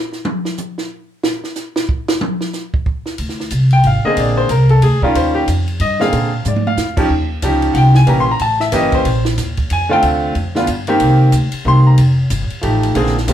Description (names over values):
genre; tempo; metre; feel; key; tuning
jazz piano trio; 184 BPM; 3/4; swing 61% on 8ths; Bb mixolydian; A4 = 440 Hz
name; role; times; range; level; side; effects
compact cocktail drum kit; drums; 0.1-13.3 s; crash cymbal, hi-hat, kick drum, ride cymbal, snare drum, toms; -22 LUFS; right 1 dB; none
upright bass; bass; 3.2-13.3 s; F1 to Bb2; -14 LUFS; equal; none
clear concert grand piano; melody; 3.7-13.3 s; D3 to C6; -15 LUFS; equal; none
room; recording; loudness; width
wet club reverb, RT60 0.6 s; heard from further back in the room; -12 LUFS; side -10 dB against mid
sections
0.0-3.2 A section; 3.2-13.3 A section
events
drum solo 0.0-3.2; grand piano solo 3.2-13.3; drum fill 6.4-6.8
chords
0.0 N.C.; 3.2 Bb9; 5.1 Eb9; 6.1 Bb7; 7.1 Eb9; 8.1 Edim7; 9.1 Bbsus2; 10.0 Dm7; 10.7 Gmadd11; 11.0 Cm7; 12.0 F9